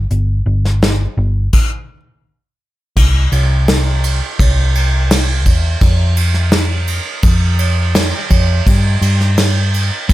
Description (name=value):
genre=folk rock and heartland rock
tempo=84 BPM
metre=4/4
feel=straight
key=unclear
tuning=A4 = 440 Hz
part: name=hollow-body short-scale picked electric bass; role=bass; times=0.0-10.1 s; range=G1 to G2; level=-13 LUFS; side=equal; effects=none
part: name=soft brush drum kit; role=drums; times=0.1-10.1 s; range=crash cymbal, hi-hat, kick drum, ride cymbal, snare drum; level=-14 LUFS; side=equal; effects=none
room=little or no reverb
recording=none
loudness=-12 LUFS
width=side -16 dB against mid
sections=0.0-3.0 A section; 3.0-10.1 B section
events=stop 1.5-3.0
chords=none